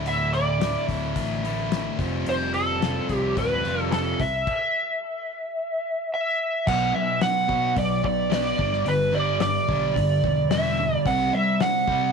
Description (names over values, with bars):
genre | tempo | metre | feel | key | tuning
classic rock | 109 BPM | 4/4 | straight | unclear | A4 = 440 Hz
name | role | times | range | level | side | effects
sludgy distorted guitar | riff | 0.0-12.1 s | D2 to F4 | -26 LUFS | left 1 dB | overdrive
picked electric bass | bass | 0.0-12.1 s | D1 to C3 | -30 LUFS | equal | none
lead guitar through a small cranked amp | melody | 0.1-12.1 s | A4 to F#5 | -24 LUFS | right 2 dB | wah, overdrive
cloth-damped thuddy drum kit | drums | 0.1-12.0 s | crash cymbal, hi-hat, kick drum, snare drum | -30 LUFS | left 6 dB | none
room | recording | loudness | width
small room ambience | 1960s-style stereo | -21 LUFS | side -5 dB against mid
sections
0.0-6.7 A section; 6.7-12.1 B section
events
stop 4.5-6.7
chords
0.0 Dsus2; 2.0 Fadd9; 4.2 C; 6.7 B5; 8.6 G5; 11.1 C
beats
| 0.07 0.62 1.17 1.72 | 2.27 2.82 3.38 3.93 | 4.48 5.03 5.58 6.13 | 6.68 7.23 7.78 8.32 | 8.87 9.42 9.97 10.52 | 11.06 11.61